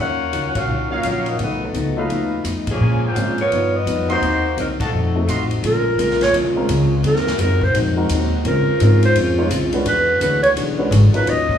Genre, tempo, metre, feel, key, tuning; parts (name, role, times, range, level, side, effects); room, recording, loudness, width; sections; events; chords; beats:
jazz, big band swing; 170 BPM; 4/4; swing 63% on 8ths; Bb minor; A4 = 441 Hz
mellow saxophone section; melody; 0.0-5.5 s; E#3 to Gb5; -22 LUFS; left 1 dB; slapback echo
vintage hollow-body jazz guitar; accompaniment; 0.0-11.5 s; G2 to C#5; -27 LUFS; left 5 dB; slapback echo
upright bass; bass; 0.0-11.6 s; G#1 to Bb2; -20 LUFS; equal
swinging big-band drum kit; drums; 0.3-11.6 s; hi-hat, kick drum, ride cymbal, snare drum; -28 LUFS; equal
warm baby grand piano; accompaniment; 0.9-11.3 s; Gb3 to C5; -25 LUFS; equal; slapback echo
mellow trumpet section; stabs; 0.9-5.4 s; Db4 to C6; -27 LUFS; right 1 dB; slapback echo
clear saxophone section; sustained chords; 5.6-11.6 s; Bb2 to F#4; -24 LUFS; equal
breathy clarinet; melody; 5.7-11.6 s; Bb4 to Eb5; -18 LUFS; right 1 dB; slapback echo
light reverb, small room ambience; live gig heard through the venue's PA, club reverb; -15 LUFS; side -9 dB against mid
0.0-5.6 A section; 5.6-11.6 B section
band accent 0.5, 2.6, 4.8; clarinet solo 5.6-11.6
0.0 Ebm9; 1.4 B7#11; 2.8 Bbm7; 3.5 G7alt; 4.2 Cm7b5; 4.9 F7b9; 5.6 Bbm7; 7.0 Ab7; 8.5 Dbmaj7; 9.9 E13
0.34 0.69 1.04 | 1.40 1.75 2.10 2.46 | 2.81 3.16 3.52 3.87 | 4.22 4.58 4.93 5.28 | 5.64 5.99 6.34 6.69 | 7.05 7.40 7.75 8.10 | 8.46 8.81 9.16 9.51 | 9.86 10.21 10.57 10.92 | 11.27